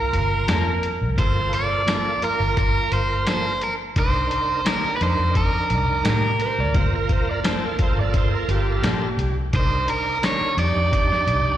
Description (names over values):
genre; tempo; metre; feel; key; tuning
straight-eighth soul blues; 86 BPM; 4/4; straight; G minor; A4 = 436 Hz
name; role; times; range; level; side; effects
overdriven electric guitar; melody; 0.0-11.6 s; Bb4 to D5; -23 LUFS; right 2 dB; slapback echo, analog delay
bright tonewheel organ; accompaniment; 0.0-11.6 s; Bb3 to Bb4; -28 LUFS; right 5 dB; slow rotary speaker, overdrive, chorus vibrato, slapback echo
vintage muted fingered electric bass; bass; 0.0-11.6 s; G1 to A2; -23 LUFS; left 1 dB; none
lo-fi sampler-style drum kit; drums; 0.1-11.4 s; hi-hat, kick drum, snare drum, tambourine; -24 LUFS; equal; none
clean electric guitar; stabs; 0.5-10.4 s; Eb3 to A4; -32 LUFS; left 5 dB; spring reverb, slapback echo
overdriven slide guitar; second line; 6.4-9.3 s; G4 to D5; -29 LUFS; right 4 dB; slapback echo
room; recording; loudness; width
little or no reverb; live gig heard through the venue's PA, recital hall reverb; -19 LUFS; side -12 dB against mid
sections
0.0-11.6 A section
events
none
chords
0.0 Gm9; 4.0 Cm9; 6.7 Gm9; 9.5 Cm9